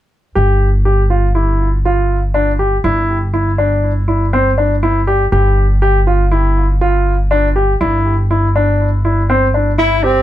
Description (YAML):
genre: progressive instrumental, progressive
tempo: 121 BPM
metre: 5/4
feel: straight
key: unclear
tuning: A4 = 440 Hz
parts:
  - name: warm baby grand piano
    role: arpeggios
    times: 0.4-10.2 s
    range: C4 to G4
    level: -15 LUFS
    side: equal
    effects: tape echo
  - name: upright bass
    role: bass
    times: 0.4-10.2 s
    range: G1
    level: -14 LUFS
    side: equal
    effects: none
  - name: breathy tenor saxophone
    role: melody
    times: 9.8-10.2 s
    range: C4 to E4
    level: -12 LUFS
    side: equal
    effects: none
room: little or no reverb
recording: close, detailed microphones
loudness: -12 LUFS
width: side -13 dB against mid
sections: 0.4-10.2 A section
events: none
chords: 0.4 G5; 2.8 C/G (rootless); 5.3 G5; 7.8 Cadd9/G (rootless)